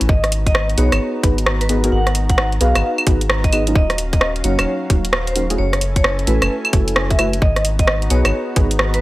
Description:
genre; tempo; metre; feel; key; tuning
UK garage, two-step garage; 131 BPM; 4/4; swing 64% on 16ths; unclear; A4 = 440 Hz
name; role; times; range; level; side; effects
warm analog pad; sustained chords; 0.0-9.0 s; B3 to A#5; -30 LUFS; equal; chorus, sidechain pumping
soft dub sub bass; bass; 0.0-9.0 s; D#1 to B1; -19 LUFS; equal; tube saturation
garage drum kit; drums; 0.0-9.0 s; claves, hi-hat, rim click; -20 LUFS; equal; overdrive
vibraphone with hard mallets; melody; 0.1-9.0 s; B4 to F#5; -24 LUFS; equal; analog delay
electronic kick drum; drums; 0.1-8.7 s; none; -15 LUFS; equal; overdrive
deep mellow chord stab; stabs; 0.8-8.7 s; F#3 to B4; -22 LUFS; equal; chorus
room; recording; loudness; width
light reverb; dry, gritty hardware recording; -14 LUFS; side -18 dB against mid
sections
0.0-9.0 A section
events
none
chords
0.1 G#m7; 3.8 D#m7; 5.6 F#m7; 7.4 G#m7

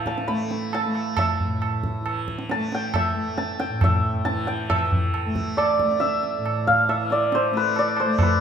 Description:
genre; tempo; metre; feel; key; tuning
indian classical, Hindustani; 136 BPM; 4/4; straight; unclear; A4 = 440 Hz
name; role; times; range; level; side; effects
santur; melody; 0.0-8.4 s; B4 to C6; -23 LUFS; equal; none
tanpura; drone; 0.0-8.4 s; A2 to A3; -28 LUFS; equal; none
tabla; percussion; 0.1-8.4 s; none; -25 LUFS; right 2 dB; none
room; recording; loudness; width
wet recital hall reverb, RT60 1.6 s; minimal, uncompressed stereo recording; -20 LUFS; side -7 dB against mid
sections
0.0-4.7 A section; 4.7-8.4 B section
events
none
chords
none

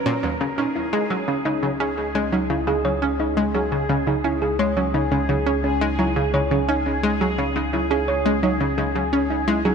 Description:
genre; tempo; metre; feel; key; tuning
ambient, sequencer-driven space music; 86 BPM; 4/4; straight; C# minor; A4 = 442 Hz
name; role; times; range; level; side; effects
thumb-piano-like synth pluck; arpeggios; 0.0-9.7 s; C#4 to C#5; -23 LUFS; right 2 dB; chorus, auto-pan, tape echo
bubbling stepped-filter texture; texture; 0.0-9.7 s; G#4 to Bb4; -29 LUFS; left 1 dB; chorus, built-in reverb
analog pluck; riff; 0.1-9.7 s; D#2 to C#4; -23 LUFS; left 1 dB; chorus, tape echo
round analog bass; bass; 0.4-9.7 s; C#2; -29 LUFS; equal; none
room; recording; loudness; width
moderate lush hall reverb, RT60 2.7 s; none; -19 LUFS; side -6 dB against mid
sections
0.4-9.7 A section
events
none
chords
0.4 C#5

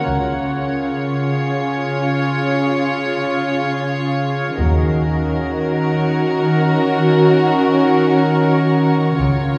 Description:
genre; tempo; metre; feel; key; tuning
cinematic; 53 BPM; 4/4; straight; Eb minor; A4 = 440 Hz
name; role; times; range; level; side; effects
drifting glass-harmonics texture; sustained chords; 0.0-9.6 s; Ab4 to Gb5; -27 LUFS; equal; chorus, built-in reverb
dark studio cello section; bass; 0.0-9.6 s; Db3 to Eb3; -22 LUFS; equal; none
rich studio violin section; melody; 0.1-9.6 s; Bb4 to Db5; -27 LUFS; equal; none
dark studio violin section; second line; 0.1-9.6 s; F4 to Gb4; -24 LUFS; equal; none
dark studio viola section; accompaniment; 0.1-9.6 s; Db4; -24 LUFS; equal; none
dark studio double bass section; bass; 0.1-9.6 s; Db2 to Eb2; -24 LUFS; equal; none
rich studio violin section; texture; 4.6-9.6 s; Bb5 to Db6; -36 LUFS; equal; none
room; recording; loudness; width
wet concert hall reverb, RT60 1.9 s; heard from further back in the room; -17 LUFS; mono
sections
0.0-9.6 A section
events
none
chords
0.1 Db; 4.6 Ebm7

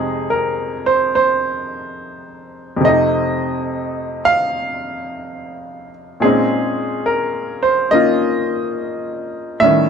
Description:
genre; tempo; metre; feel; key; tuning
solo jazz; 71 BPM; 4/4; swing 67% on 8ths; F minor; A4 = 440 Hz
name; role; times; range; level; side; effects
bright upright piano; solo; 0.0-9.9 s; F2 to F5; -16 LUFS; right 1 dB; none
room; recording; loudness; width
moderate studio reverb, RT60 0.5 s; dark, warm production; -15 LUFS; side -6 dB against mid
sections
0.0-9.9 A section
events
none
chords
0.0 Fm7; 2.8 F7; 6.2 Bbm11

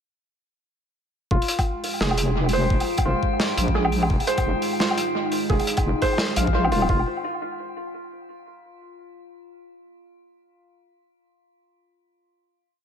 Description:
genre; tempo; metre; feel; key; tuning
half-time drum and bass; 172 BPM; 4/4; swing 60% on 16ths, half-time; F minor; A4 = 440 Hz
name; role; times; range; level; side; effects
dark analog pad; sustained chords; 1.8-7.1 s; Ab3 to G5; -31 LUFS; right 2 dB; chorus, sidechain pumping
felt-muted upright piano; arpeggios; 1.3-7.1 s; F4 to F5; -26 LUFS; right 1 dB; tape echo
deep soft wobble bass; bass; 1.3-7.1 s; Eb1 to Bb1; -24 LUFS; equal; chorus
electronic kick drum; drums; 1.3-7.0 s; none; -24 LUFS; equal; none
metallic inharmonic drone; texture; 1.7-6.9 s; F4; -32 LUFS; equal; chorus, built-in reverb
crunchy breakbeat drum kit; drums; 1.4-6.9 s; hi-hat, snare drum, woodblock; -26 LUFS; left 1 dB; analog delay
room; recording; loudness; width
light reverb, small room ambience; echo-heavy mix; -20 LUFS; side -8 dB against mid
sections
1.3-6.9 drop; 6.9-8.3 final chord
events
drop 1.3-6.9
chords
1.3 Fmadd9

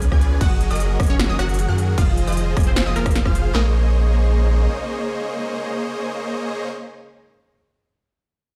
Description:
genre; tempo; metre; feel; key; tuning
future bass; 153 BPM; 4/4; half-time; Bb minor; A4 = 440 Hz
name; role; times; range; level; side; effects
unison pluck; melody; 0.0-6.7 s; Bb3 to Gb5; -32 LUFS; equal; phaser, sidechain pumping, digital delay
dark symphonic string section; sustained chords; 0.0-6.7 s; Db3 to Gb4; -36 LUFS; equal; sidechain pumping
unison pluck; arpeggios; 0.0-6.7 s; Eb6 to Ab6; -36 LUFS; equal; cassette tape, sidechain pumping, digital delay
supersaw chords; riff; 0.0-6.7 s; F3 to Ab5; -28 LUFS; equal; sidechain pumping, digital delay
saturated sub bass; bass; 0.0-4.7 s; F1 to Gb2; -21 LUFS; equal; sidechain pumping
big-room dance drum kit; drums; 0.0-3.4 s; crash cymbal, hi-hat, rim click, snare drum; -30 LUFS; equal; none
big-room dance drum kit; drums; 0.1-3.6 s; handclaps, kick drum, snare drum; -22 LUFS; equal; none
room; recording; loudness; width
digital ambience; played on a big sound system in a bare room, stone room reverb; -20 LUFS; mono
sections
0.0-3.5 A section; 3.5-6.7 B section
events
drop 0.0-3.5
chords
0.4 Gb6; 2.0 Fm7; 3.5 Bbm11

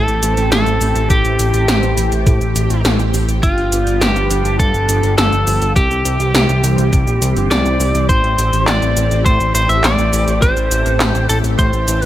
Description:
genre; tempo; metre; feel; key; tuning
synthwave; 103 BPM; 4/4; straight; A minor; A4 = 438 Hz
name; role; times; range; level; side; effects
lightly driven lead guitar; melody; 0.0-12.1 s; F4 to E5; -18 LUFS; equal; tape echo
analog string pad; sustained chords; 0.0-12.1 s; E3 to G4; -22 LUFS; left 1 dB; ensemble chorus, phaser, sidechain pumping
fat analog bass; bass; 0.0-12.1 s; G1 to A2; -16 LUFS; equal; none
80s electronic pad drums; drums; 0.1-12.1 s; cabasa, handclaps, hi-hat, snare drum; -19 LUFS; equal; none
electronic kick drum; drums; 1.1-11.7 s; none; -15 LUFS; equal; none
room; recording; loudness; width
light reverb, digital ambience; none; -12 LUFS; side -13 dB against mid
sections
0.0-12.1 A section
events
none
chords
0.0 Am7; 3.4 G7; 5.8 C; 8.1 Am7

